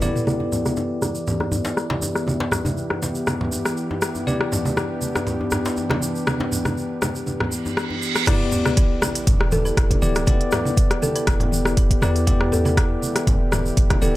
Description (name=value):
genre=afro house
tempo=120 BPM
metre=4/4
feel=swing 53% on 16ths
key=E minor pentatonic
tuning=A4 = 440 Hz
part: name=warm analog pad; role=sustained chords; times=0.0-14.2 s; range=E3 to B4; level=-28 LUFS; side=equal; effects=chorus, sidechain pumping
part: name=bell-like tine electric piano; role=stabs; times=0.0-14.2 s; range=B3 to D5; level=-27 LUFS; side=left 2 dB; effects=fast stereo tremolo, sidechain pumping, low-pass filter, tape echo
part: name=afro-pop drum kit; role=drums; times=0.0-14.1 s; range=crash cymbal, hi-hat, rim click, toms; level=-26 LUFS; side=left 1 dB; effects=low-pass filter on snare, studio ambience, low-pass filter on toms, low-pass filter on hats, low-pass filter on cymbals
part: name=congas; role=percussion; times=0.0-14.0 s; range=none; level=-27 LUFS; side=right 1 dB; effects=none
part: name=egg shaker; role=percussion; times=0.0-14.1 s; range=none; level=-33 LUFS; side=right 3 dB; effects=none
part: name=djembe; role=percussion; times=0.4-8.0 s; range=none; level=-30 LUFS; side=left 1 dB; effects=none
part: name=reverse cymbal and sub drop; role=sound effects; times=7.7-10.3 s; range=none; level=-28 LUFS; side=right 3 dB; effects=none
part: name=kalimba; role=arpeggios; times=8.3-14.1 s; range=E4 to B4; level=-30 LUFS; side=equal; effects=sidechain pumping, tape echo
part: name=electronic kick drum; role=drums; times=8.3-14.0 s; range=none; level=-19 LUFS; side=equal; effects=studio ambience
part: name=warm 808-style bass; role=bass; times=9.3-14.2 s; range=D1 to E2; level=-24 LUFS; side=equal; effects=sidechain pumping
room=light reverb, small room ambience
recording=none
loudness=-19 LUFS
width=side -16 dB against mid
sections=0.3-8.3 A section; 8.3-14.2 B section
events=drum fill 0.0; filter sweep on drum 0.3-8.3; filter sweep on tine electric piano 0.3-8.3; reverse cymbal 7.7-8.3; drop 8.3-14.2; impact 8.3-10.3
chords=0.3 Em7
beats=| 0.27 0.77 1.27 1.77 | 2.27 2.77 3.27 3.77 | 4.27 4.77 5.27 5.77 | 6.27 6.77 7.27 7.77 | 8.27 8.77 9.27 9.77 | 10.27 10.77 11.27 11.77 | 12.27 12.77 13.27 13.77